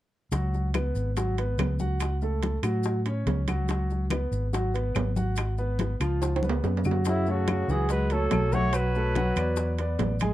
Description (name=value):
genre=Afro-Cuban jazz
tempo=143 BPM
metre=4/4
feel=straight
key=F# minor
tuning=A4 = 440 Hz
part: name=clear concert grand piano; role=accompaniment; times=0.3-10.3 s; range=E#3 to G#5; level=-31 LUFS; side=equal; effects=none
part: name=fingered electric bass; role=bass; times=0.3-10.3 s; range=G#1 to A2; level=-27 LUFS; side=equal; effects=none
part: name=bongos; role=percussion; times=0.3-10.3 s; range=none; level=-38 LUFS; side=left 5 dB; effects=none
part: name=congas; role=percussion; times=0.3-10.3 s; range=none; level=-33 LUFS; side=left 1 dB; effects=none
part: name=maracas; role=percussion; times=0.3-10.3 s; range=none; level=-46 LUFS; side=left 7 dB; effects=none
part: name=timbales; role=percussion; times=0.3-10.3 s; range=none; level=-34 LUFS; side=right 6 dB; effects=none
part: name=claves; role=percussion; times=0.7-10.3 s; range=none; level=-41 LUFS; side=left 8 dB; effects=none
part: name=mellow trumpet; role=melody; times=7.1-10.0 s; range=E4 to C#5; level=-29 LUFS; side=right 1 dB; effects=plate reverb
part: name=mellow tenor saxophone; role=second line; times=7.1-10.0 s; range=C#3 to A3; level=-33 LUFS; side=left 2 dB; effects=none
room=light reverb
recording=dark, warm production, tape saturation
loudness=-24 LUFS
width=side -14 dB against mid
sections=0.3-7.1 A section; 7.1-10.3 B section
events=drum fill 6.2-7.1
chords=0.3 C#7sus4; 2.0 F#m/C#; 3.7 C#7sus4; 5.4 G#m7; 6.2 C#7; 7.1 F#m; 8.7 Bm7; 9.6 E9